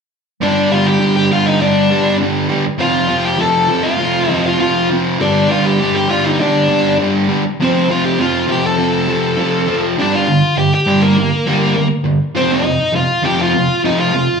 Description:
punk; 201 BPM; 4/4; straight; G minor; A4 = 440 Hz
dark smooth lead guitar; melody; 0.4-14.4 s; Bb3 to A5; -16 LUFS; left 1 dB; overdrive, slapback echo
overdriven electric guitar; riff; 0.4-14.3 s; F2 to G3; -14 LUFS; right 1 dB; slapback echo
light reverb; live gig heard through the venue's PA, club reverb; -12 LUFS; side -6 dB against mid
0.4-10.0 A section; 10.0-14.4 B section
0.4 G5; 2.7 F; 5.2 G5; 7.4 F; 10.0 Gm; 12.2 F5
| 0.42 0.72 1.01 1.31 | 1.61 1.91 2.21 2.51 | 2.81 3.11 3.40 3.70 | 4.00 4.30 4.60 4.90 | 5.20 5.50 5.80 6.09 | 6.39 6.69 6.99 7.29 | 7.59 7.89 8.18 8.48 | 8.78 9.08 9.38 9.67 | 9.97 10.27 10.57 10.86 | 11.16 11.46 11.75 12.05 | 12.35 12.64 12.94 13.24 | 13.54 13.83 14.13

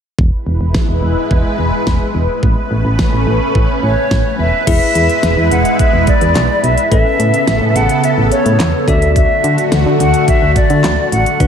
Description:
synth-pop; 107 BPM; 4/4; straight; E mixolydian; A4 = 440 Hz
lush unison pad; sustained chords; 0.2-11.5 s; C#3 to B4; -17 LUFS; equal; chorus, phaser
solid FM bass; bass; 0.2-11.5 s; E1 to D3; -15 LUFS; equal
pop drum kit; drums; 0.2-11.5 s; crash cymbal, handclaps, hi-hat, kick drum, snare drum; -16 LUFS; equal
hollow concert flute; melody; 3.8-11.5 s; C#5 to F#5; -16 LUFS; left 1 dB; ping-pong delay
bell-like tine electric piano; accompaniment; 4.7-11.5 s; C#4 to D5; -21 LUFS; left 4 dB; wide subtle chorus
moderate plate reverb, RT60 1.7 s; dreamy mix soaked in reverb; -11 LUFS; side -8 dB against mid
0.2-4.7 A section; 4.7-11.5 B section
0.2 E; 2.4 Aadd9; 4.4 E; 6.9 Aadd9; 8.9 D
| 0.19 0.75 1.31 1.87 | 2.43 2.99 3.55 4.11 | 4.67 5.23 5.79 6.36 | 6.92 7.48 8.04 8.60 | 9.16 9.72 10.28 10.84 | 11.40

